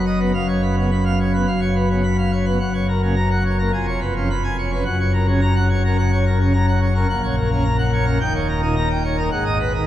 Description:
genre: classical, organ toccata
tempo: 107 BPM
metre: 4/4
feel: straight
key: F# major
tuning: A4 = 440 Hz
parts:
  - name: pipe organ, plenum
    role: solo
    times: 0.0-9.9 s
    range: D#1 to B5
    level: -17 LUFS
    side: equal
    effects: none
room: wet cathedral reverb, RT60 4.8 s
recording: heard from further back in the room, vinyl crackle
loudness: -17 LUFS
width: side -12 dB against mid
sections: 0.0-9.9 A section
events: none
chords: 0.3 C#7/F#; 2.6 F#; 3.7 C#7/E#; 4.9 F#; 7.1 F#/A#; 8.2 D#7; 9.3 G#m7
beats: | 0.35 0.92 1.48 2.05 | 2.61 3.17 3.74 4.30 | 4.86 5.42 5.98 6.54 | 7.09 7.65 8.21 8.77 | 9.32

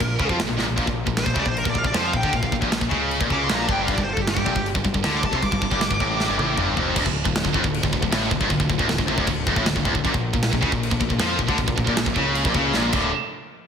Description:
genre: heavy metal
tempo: 155 BPM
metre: 4/4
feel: straight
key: D harmonic minor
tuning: A4 = 440 Hz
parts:
  - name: high-gain lead guitar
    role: melody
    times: 0.0-6.6 s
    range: G4 to D6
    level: -27 LUFS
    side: equal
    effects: distortion, tape echo
  - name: distorted electric guitar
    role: riff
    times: 0.0-13.1 s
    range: D2 to F3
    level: -30 LUFS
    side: right 1 dB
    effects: overdrive, slapback echo
  - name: heavy high-gain guitar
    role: riff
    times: 0.0-13.1 s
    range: D2 to F3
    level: -27 LUFS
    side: right 10 dB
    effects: distortion
  - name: tight distorted guitar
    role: riff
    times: 0.0-13.1 s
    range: D2 to F3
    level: -26 LUFS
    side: left 8 dB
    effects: distortion, slapback echo
  - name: fuzz picked electric bass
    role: bass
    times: 0.0-13.1 s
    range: D1 to F2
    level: -28 LUFS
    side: equal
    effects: overdrive
  - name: tight metal drum kit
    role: drums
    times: 0.0-13.0 s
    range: crash cymbal, kick drum, snare drum, toms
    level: -24 LUFS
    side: equal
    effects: none
  - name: airy breathy pad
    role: sustained chords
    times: 7.0-13.1 s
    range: D3 to Bb4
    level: -36 LUFS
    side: equal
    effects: none
room: moderate lush hall reverb, RT60 1.6 s, small room ambience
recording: big arena sound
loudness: -19 LUFS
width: side -7 dB against mid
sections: 0.0-7.0 A section; 7.0-13.1 B section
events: lead electric guitar solo 0.0-7.0; drum fill 0.6, 6.2-7.0, 12.7-13.1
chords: 0.0 Bb5; 3.9 G5; 7.0 Dm; 10.1 Bb5; 12.9 Dm; 13.1 N.C.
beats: 0.01 0.39 | 0.78 1.17 1.56 1.94 | 2.33 2.72 3.11 3.49 | 3.88 4.27 4.65 5.04 | 5.43 5.81 6.20 6.59 | 6.97 7.36 7.74 8.13 | 8.51 8.90 9.29 9.67 | 10.05 10.44 10.82 11.21 | 11.60 11.98 12.36 12.75

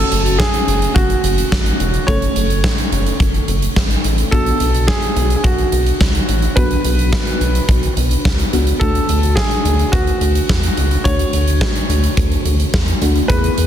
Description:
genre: synth-pop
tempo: 107 BPM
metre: 4/4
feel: straight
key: unclear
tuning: A4 = 440 Hz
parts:
  - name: clear concert grand piano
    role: melody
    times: 0.0-13.7 s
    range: F#4 to C#5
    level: -22 LUFS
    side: right 1 dB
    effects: ping-pong delay
  - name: FM electric piano with soft pad layer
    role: accompaniment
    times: 0.0-13.7 s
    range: A3 to A4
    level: -22 LUFS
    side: left 1 dB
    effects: chorus, tremolo
  - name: rubbery square bass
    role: bass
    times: 0.0-13.7 s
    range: E1 to E2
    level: -17 LUFS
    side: equal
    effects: none
  - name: huge arena drum kit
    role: drums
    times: 0.1-13.7 s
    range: hi-hat, kick drum, snare drum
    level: -17 LUFS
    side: equal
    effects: none
room: light reverb, studio reverb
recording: dense, heavily limited modern master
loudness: -13 LUFS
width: side -10 dB against mid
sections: 0.0-13.7 A section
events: none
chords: 0.0 F#m; 4.3 Bm; 8.8 D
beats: 0.40 0.96 1.52 | 2.08 2.64 3.20 3.76 | 4.32 4.88 5.45 6.01 | 6.57 7.13 7.69 8.25 | 8.81 9.37 9.93 10.49 | 11.05 11.61 12.18 12.74 | 13.30

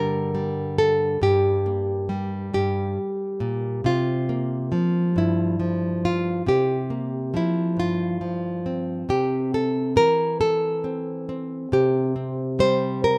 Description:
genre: folk, solo fingerstyle acoustic guitar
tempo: 46 BPM (dotted quarters)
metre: 6/8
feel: straight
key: unclear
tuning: A4 = 440 Hz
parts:
  - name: nylon-string guitar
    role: solo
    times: 0.0-13.2 s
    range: G2 to C5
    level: -23 LUFS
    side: equal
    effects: none
room: moderate studio reverb, RT60 0.5 s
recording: none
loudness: -24 LUFS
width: mono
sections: 0.0-9.1 A section; 9.1-13.2 B section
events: none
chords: 0.0 Gm; 3.8 C7sus4; 9.1 C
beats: | 1.21 2.53 | 3.84 5.15 | 6.47 7.78 | 9.09 10.40 | 11.71 13.02

